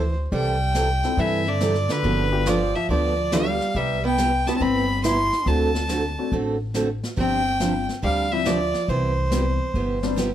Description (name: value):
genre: country, western swing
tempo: 140 BPM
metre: 4/4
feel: swing 67% on 8ths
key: C major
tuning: A4 = 439 Hz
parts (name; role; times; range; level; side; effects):
- clear fiddle; melody; 0.0-10.2 s; B4 to C6; -25 LUFS; equal; none
- archtop guitar, miked and amplified; second line; 0.0-10.2 s; D3 to E4; -27 LUFS; right 1 dB; none
- upright bass; bass; 0.0-10.3 s; G1 to G2; -26 LUFS; equal; none
- picked steel-string acoustic guitar; accompaniment; 0.3-10.3 s; C3 to A4; -26 LUFS; right 3 dB; none
- jazz brush drum kit; drums; 0.3-10.3 s; brushed snare drum, hi-hat, kick drum, snare drum; -31 LUFS; equal; none
- dark upright piano; accompaniment; 1.0-10.2 s; G3 to A4; -29 LUFS; left 6 dB; none
room: moderate studio ambience, RT60 0.5 s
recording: none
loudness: -20 LUFS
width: side -11 dB against mid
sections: 0.0-10.3 A section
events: none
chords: 0.3 C69; 2.0 G7; 3.8 Cmaj7; 5.5 D7; 7.2 G7sus4; 8.9 Cmaj7